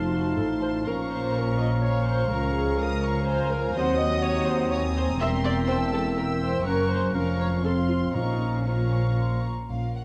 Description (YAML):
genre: quick classical-period movement for symphony orchestra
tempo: 123 BPM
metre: 3/4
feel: rubato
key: Bb minor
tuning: A4 = 441 Hz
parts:
  - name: dark studio violin section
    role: melody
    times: 0.0-10.0 s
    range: F5 to E6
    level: -41 LUFS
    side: equal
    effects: none
  - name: mellow hollow concert flute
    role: second line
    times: 0.0-9.7 s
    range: Gb5 to Db6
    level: -40 LUFS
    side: equal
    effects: none
  - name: warm chamber violin section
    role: second line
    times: 0.0-10.0 s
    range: F4 to C6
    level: -42 LUFS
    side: equal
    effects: none
  - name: warm clarinet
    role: second line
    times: 0.0-9.4 s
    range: C4 to Eb4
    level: -36 LUFS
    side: equal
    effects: none
  - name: warm oboe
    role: second line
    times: 0.0-9.4 s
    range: Eb5 to Gb5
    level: -38 LUFS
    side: equal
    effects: none
  - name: dark bassoon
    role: accompaniment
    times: 0.0-9.4 s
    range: F3 to Bb3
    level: -36 LUFS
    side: equal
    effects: none
  - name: dark chamber viola section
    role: accompaniment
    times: 0.0-10.0 s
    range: Db4 to E5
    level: -33 LUFS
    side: equal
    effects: none
  - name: warm French horn section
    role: sustained chords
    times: 0.0-9.4 s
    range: F3 to Eb4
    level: -36 LUFS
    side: equal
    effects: none
  - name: dark chamber double bass section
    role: bass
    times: 0.0-10.0 s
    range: E1 to Eb2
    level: -32 LUFS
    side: equal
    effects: none
  - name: warm chamber cello section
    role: bass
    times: 0.0-10.0 s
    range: Db2 to Bb2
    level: -32 LUFS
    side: equal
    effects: none
  - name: timpani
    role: percussion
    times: 8.1-10.0 s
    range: Bb2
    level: -35 LUFS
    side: equal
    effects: none
room: moderate concert hall reverb, RT60 1.8 s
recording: dark, warm production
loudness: -25 LUFS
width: mono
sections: 0.0-9.7 A section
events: none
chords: 0.0 F7; 0.9 Bbm; 2.3 Bbm/Db; 3.8 Cdim/Eb; 5.2 C7/E; 6.7 Gb; 7.1 Bbm/F; 7.6 F; 8.2 Bbm